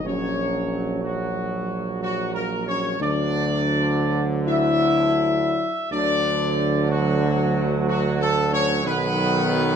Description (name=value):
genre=classical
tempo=61 BPM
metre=3/4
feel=straight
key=unclear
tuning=A4 = 440 Hz
part: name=dark trumpet section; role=melody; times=0.0-9.8 s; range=F#4 to E5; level=-25 LUFS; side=equal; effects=none
part: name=bright trombone section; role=sustained chords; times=0.0-9.8 s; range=D3 to F#3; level=-26 LUFS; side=right 4 dB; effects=none
part: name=mellow French horn section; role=sustained chords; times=0.0-9.8 s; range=F#3 to E4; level=-26 LUFS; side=left 5 dB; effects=none
part: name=warm tuba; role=bass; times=0.0-9.8 s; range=A#1 to D2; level=-25 LUFS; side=right 3 dB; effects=none
room=moderate scoring stage reverb, RT60 1.8 s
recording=close, detailed microphones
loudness=-20 LUFS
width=side -7 dB against mid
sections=0.0-9.8 A section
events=none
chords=0.0 F#/A#; 3.0 D; 8.9 B